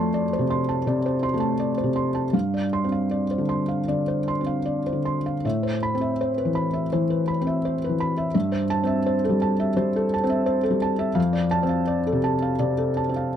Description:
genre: neoclassical minimalist piano.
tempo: 77-87 BPM.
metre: 4/4.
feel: rubato.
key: unclear.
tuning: A4 = 440 Hz.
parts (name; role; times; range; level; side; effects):
felt-muted upright piano; solo; 0.0-13.4 s; F2 to C6; -21 LUFS; equal; none.
room: little or no reverb.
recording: dry, close 1970s-style studio recording.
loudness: -21 LUFS.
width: side -9 dB against mid.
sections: 0.0-13.4 A section.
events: none.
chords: 0.0 F6; 2.3 G7sus4; 5.4 Amadd9; 8.3 C6/G; 11.2 F6.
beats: 0.13 0.85 1.59 | 2.34 3.11 3.89 4.67 | 5.44 6.19 6.91 7.63 | 8.34 9.06 9.77 10.48 | 11.17 11.88 12.61 13.36.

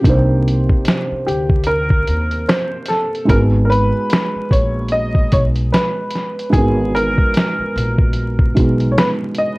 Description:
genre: lo-fi hip hop.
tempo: 74 BPM.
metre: 4/4.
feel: swing 60% on 16ths.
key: unclear.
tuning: A4 = 440 Hz.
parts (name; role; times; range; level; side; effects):
warm upright piano; melody; 0.0-9.6 s; G4 to Eb5; -20 LUFS; equal; low-pass filter.
felt-muted upright piano; accompaniment; 0.0-9.6 s; C3 to C5; -21 LUFS; right 1 dB; cassette tape, low-pass filter.
upright bass; bass; 0.0-8.9 s; Ab1 to Eb2; -18 LUFS; equal; none.
lo-fi sampler-style drum kit; drums; 0.0-9.6 s; hi-hat, kick drum, snare drum; -16 LUFS; equal; none.
room: light reverb.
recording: vinyl crackle.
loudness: -14 LUFS.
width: side -23 dB against mid.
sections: 0.0-9.6 A section.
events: none.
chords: 0.0 Cm9; 3.3 Abm9.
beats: | 0.04 0.86 1.67 2.48 | 3.29 4.10 4.91 5.72 | 6.53 7.34 8.15 8.96.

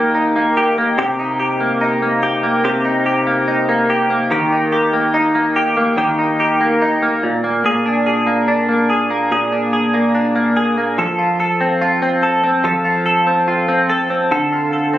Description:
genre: pop.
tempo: 72 BPM.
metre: 4/4.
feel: straight.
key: F major from 11.0 s.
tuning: A4 = 440 Hz.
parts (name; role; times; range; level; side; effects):
direct-recorded clean electric guitar; solo; 0.0-15.0 s; Bb2 to A4; -14 LUFS; equal; analog chorus.
room: light reverb, digital ambience.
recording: recorded on a phone in the room, club reverb, compression.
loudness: -14 LUFS.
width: side -13 dB against mid.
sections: 0.0-11.0 A section; 11.0-15.0 A section.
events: none.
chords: 0.0 Eb; 1.0 Cm7; 4.3 Eb; 7.2 Bb7; 11.0 F; 14.3 Dm7.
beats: 0.15 | 0.98 1.81 2.65 3.48 | 4.31 5.15 5.98 6.81 | 7.65 8.48 9.31 10.15 | 10.98 11.81 12.65 13.48 | 14.31.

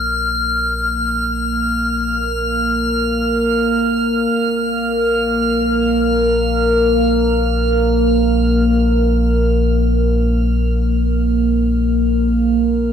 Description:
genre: ambient.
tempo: free time.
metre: none.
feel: none.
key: unclear.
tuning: A4 = 439 Hz.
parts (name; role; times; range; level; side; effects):
warm sub bass; bass; 0.0-12.9 s; Bb1; -20 LUFS; equal; none.
analog drone; drone; 0.0-12.9 s; Bb3; -17 LUFS; equal; chorus.
drifting glass-harmonics texture; texture; 0.0-12.9 s; F6; -22 LUFS; equal; chorus, built-in reverb.
room: wet huge ambient reverb, RT60 8.5 s.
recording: cassette tape.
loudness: -14 LUFS.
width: side -8 dB against mid.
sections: 0.0-12.9 A section.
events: fade-in on sub bass 0.0-12.9; fade-in on synth drone 0.0-12.9; fade-out on synth texture 0.0-12.9.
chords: 0.0 Bb5.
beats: free time.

